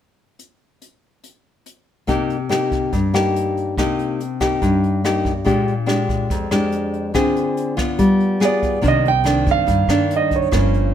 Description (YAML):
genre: bossa nova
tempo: 142 BPM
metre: 4/4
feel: straight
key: C minor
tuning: A4 = 435 Hz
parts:
  - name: jazz brush drum kit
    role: drums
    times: 0.4-10.8 s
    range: hi-hat, kick drum, rim click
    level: -25 LUFS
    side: right 1 dB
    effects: none
  - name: nylon-string guitar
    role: accompaniment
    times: 2.1-10.9 s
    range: F2 to Ab4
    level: -18 LUFS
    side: left 2 dB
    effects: none
  - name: warm grand piano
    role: melody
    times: 8.4-10.9 s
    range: Db5 to G5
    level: -19 LUFS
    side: right 8 dB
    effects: none
  - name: upright bass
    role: bass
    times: 8.8-10.9 s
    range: G1 to G2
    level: -21 LUFS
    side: right 1 dB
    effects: none
room: light reverb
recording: none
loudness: -16 LUFS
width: side -10 dB against mid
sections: 0.4-2.1 A section; 2.1-8.8 B section; 8.8-10.9 C section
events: none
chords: 0.4 N.C.; 2.1 Cm7; 5.5 Bb6; 7.2 Dm7b5; 8.0 G7b9; 8.8 Cm9